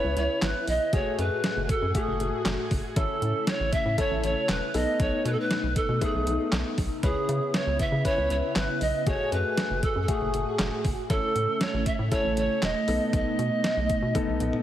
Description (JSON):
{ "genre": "synth-pop", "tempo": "118 BPM", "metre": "4/4", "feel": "straight", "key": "unclear", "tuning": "A4 = 441 Hz", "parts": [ { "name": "pan flute", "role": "melody", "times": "0.0-14.6 s", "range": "G#4 to E5", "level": "-28 LUFS", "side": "right 2 dB", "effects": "none" }, { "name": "warm concert grand piano", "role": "accompaniment", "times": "0.0-14.6 s", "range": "A3 to B4", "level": "-32 LUFS", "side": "left 4 dB", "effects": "none" }, { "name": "ensemble organ-string", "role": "sustained chords", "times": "0.0-14.6 s", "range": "A2 to G#4", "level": "-32 LUFS", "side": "equal", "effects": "phaser, ensemble chorus" }, { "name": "rubbery square bass", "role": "bass", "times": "0.0-14.5 s", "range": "E1 to C#3", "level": "-30 LUFS", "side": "equal", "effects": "none" }, { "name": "detuned 8-bit digital drum machine", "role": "drums", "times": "0.2-14.6 s", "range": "handclaps, hi-hat, kick drum, snare drum, toms", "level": "-29 LUFS", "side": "equal", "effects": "none" } ], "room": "moderate lush hall reverb, RT60 1.9 s, digital ambience", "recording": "heavily compressed radio sound", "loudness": "-24 LUFS", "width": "side -12 dB against mid", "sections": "0.0-14.6 A section", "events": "drum fill 14.2-14.6; grand piano fill 14.4", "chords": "0.0 C#m7; 0.9 F#madd9; 3.0 A; 4.7 B7; 7.0 C#m7; 9.1 F#madd9; 11.1 A; 12.9 B7" }